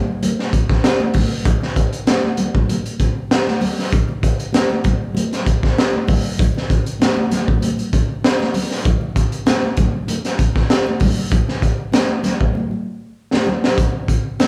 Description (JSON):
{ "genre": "funk", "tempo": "97 BPM", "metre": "4/4", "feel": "straight", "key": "none", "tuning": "none", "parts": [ { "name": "crunchy breakbeat drum kit", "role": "drums", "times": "0.2-14.5 s", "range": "hi-hat, kick drum, snare drum", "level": "-19 LUFS", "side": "equal", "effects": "none" }, { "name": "congas", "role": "percussion", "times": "0.2-14.5 s", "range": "none", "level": "-25 LUFS", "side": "equal", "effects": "none" } ], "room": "light reverb", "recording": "band playing live in one room", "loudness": "-18 LUFS", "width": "mono", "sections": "0.0-13.8 A section", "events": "drum fill 12.6-13.8", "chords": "none" }